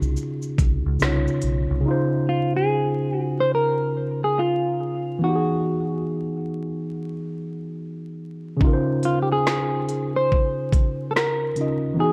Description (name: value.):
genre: lo-fi hip hop.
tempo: 71 BPM.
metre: 4/4.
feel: swing 65% on 16ths.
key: Db major.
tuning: A4 = 439 Hz.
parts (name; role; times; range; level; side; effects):
semi-hollow electric guitar; melody; 0.0-12.1 s; F4 to Db5; -26 LUFS; equal; low-pass filter, analog delay.
tine electric piano; accompaniment; 0.0-12.1 s; Db3 to Eb5; -27 LUFS; equal; overdrive, cassette tape, low-pass filter.
deep dub fingered electric bass; bass; 0.0-1.8 s; Cb2 to Db2; -26 LUFS; equal; none.
garage drum kit; drums; 0.0-1.7, 8.6-11.8 s; finger snaps, hi-hat, kick drum, shaker, snare drum; -24 LUFS; equal; none.
room: light reverb, digital ambience.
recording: vinyl crackle.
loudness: -23 LUFS.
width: mono.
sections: 0.0-1.9 A section; 1.9-12.1 B section.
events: none.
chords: 0.0 Dbmaj9; 5.2 Emaj9; 8.6 Dbmaj9.